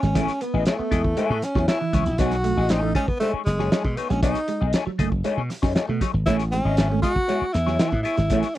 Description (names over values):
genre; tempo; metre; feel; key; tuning
funk; 118 BPM; 4/4; straight; unclear; A4 = 439 Hz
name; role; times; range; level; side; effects
breathy tenor saxophone; melody; 0.0-8.6 s; G#3 to F#4; -25 LUFS; equal; none
semi-hollow electric guitar; accompaniment; 0.0-8.6 s; A3 to D#5; -28 LUFS; left 6 dB; wah
electric guitar at the edge of break-up; riff; 0.0-8.5 s; E3 to B3; -30 LUFS; right 6 dB; none
slap bass; bass; 0.0-8.4 s; F#1 to B2; -24 LUFS; equal; none
cloth-damped thuddy drum kit; drums; 0.0-8.6 s; hi-hat, kick drum, snare drum; -24 LUFS; equal; none
room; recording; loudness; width
little or no reverb; dry, close 1970s-style studio recording; -20 LUFS; side -14 dB against mid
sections
0.0-8.6 A section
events
none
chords
0.0 Amaj9; 2.2 B13; 6.3 Amaj9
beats
| 0.15 0.66 1.17 1.68 | 2.19 2.70 3.21 3.72 | 4.23 4.74 5.25 5.76 | 6.27 6.78 7.29 7.80 | 8.30